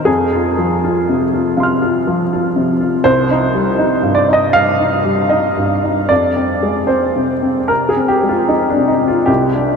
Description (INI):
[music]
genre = neoclassical minimalist piano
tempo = 74-81 BPM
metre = 4/4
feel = rubato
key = unclear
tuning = A4 = 440 Hz
[part]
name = warm upright piano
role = solo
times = 0.0-9.8 s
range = C2 to F6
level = -12 LUFS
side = equal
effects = ping-pong delay
[sound]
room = wet huge ambient reverb, RT60 7.0 s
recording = dreamy mix soaked in reverb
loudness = -12 LUFS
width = side -5 dB against mid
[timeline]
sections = 0.0-9.8 A section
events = none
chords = 0.1 Fm; 3.1 Cm; 6.1 Fm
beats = | 0.07 0.83 1.57 2.32 | 3.06 3.80 4.55 5.32 | 6.10 6.89 7.70 8.49 | 9.28